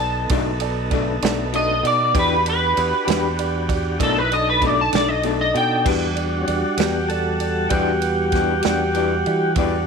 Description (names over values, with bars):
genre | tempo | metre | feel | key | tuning
slow blues | 65 BPM (dotted quarters) | 12/8 | straight | E minor | A4 = 439 Hz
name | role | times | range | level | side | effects
electric guitar at the edge of break-up | melody | 0.0-5.9 s | A4 to A5 | -20 LUFS | equal | analog chorus
clear upright piano | accompaniment | 0.0-9.8 s | D#4 to D5 | -29 LUFS | right 14 dB | none
tonewheel organ | sustained chords | 0.0-9.9 s | G3 to A#4 | -23 LUFS | equal | slow rotary speaker
fingered electric bass | bass | 0.0-9.9 s | B1 to E3 | -25 LUFS | equal | none
electric guitar through a small old amp | accompaniment | 0.3-9.8 s | B2 to G4 | -25 LUFS | left 14 dB | tremolo
natural country drum kit | drums | 0.3-9.7 s | crash cymbal, kick drum, ride cymbal, snare drum | -26 LUFS | right 4 dB | none
room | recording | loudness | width
light reverb, small room ambience | 1960s-style stereo with parts hard left and right | -17 LUFS | side -5 dB against mid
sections
0.0-5.9 A section; 5.9-9.9 A section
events
clean electric guitar solo 0.0-5.9; tonewheel organ solo 5.9-9.9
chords
0.0 B7#9; 2.2 Em7; 4.0 B7#9; 5.9 Em7